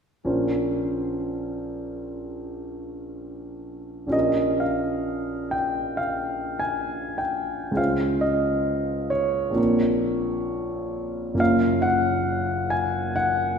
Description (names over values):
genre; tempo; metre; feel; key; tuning
classical, impressionist solo piano; 53-69 BPM; 4/4; rubato; Bb dorian; A4 = 438 Hz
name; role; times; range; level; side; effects
bright concert grand piano; solo; 0.2-13.6 s; Gb1 to Ab5; -23 LUFS; equal; none
room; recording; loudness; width
wet scoring stage reverb, RT60 1.8 s; recorded in a church or concert hall; -22 LUFS; side -6 dB against mid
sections
0.3-4.1 A section; 4.1-13.6 B section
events
none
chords
0.3 Bbmadd9; 4.1 Bbm6; 7.8 Dbmaj9; 9.6 Bbmadd9; 11.4 Gbmaj7